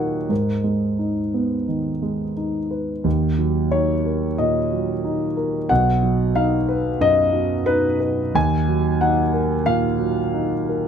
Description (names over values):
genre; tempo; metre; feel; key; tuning
classical, contemporary piece for solo grand piano; 90 BPM; 4/4; rubato; Eb minor; A4 = 441 Hz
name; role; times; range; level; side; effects
dark concert grand piano; solo; 0.0-10.9 s; B1 to Ab5; -18 LUFS; equal; none
room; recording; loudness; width
moderate studio reverb, RT60 0.7 s; none; -18 LUFS; side -7 dB against mid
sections
0.0-10.9 A section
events
none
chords
0.3 Abmadd9; 3.1 Ebm; 5.7 B; 8.3 Ebm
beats
| 0.30 0.99 1.69 2.37 | 3.06 3.73 4.39 5.04 | 5.70 6.36 7.01 7.67 | 8.35 9.01 9.66 10.33